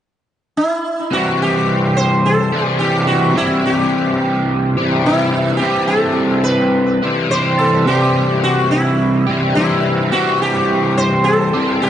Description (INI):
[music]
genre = rock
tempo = 107 BPM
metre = 4/4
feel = straight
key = C lydian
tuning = A4 = 440 Hz
[part]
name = sitar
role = melody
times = 0.6-11.9 s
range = E4 to C5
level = -17 LUFS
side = equal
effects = tape echo
[part]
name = crunchy overdriven guitar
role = riff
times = 1.1-11.9 s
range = C3 to G4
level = -15 LUFS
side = equal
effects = rotary speaker
[sound]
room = moderate spring reverb, RT60 2.1 s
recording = echo-heavy mix, nothing above 10.3 kHz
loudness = -13 LUFS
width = side -10 dB against mid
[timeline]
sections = 0.0-1.1 A section; 1.1-11.9 B section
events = none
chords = 0.0 N.C.; 1.1 C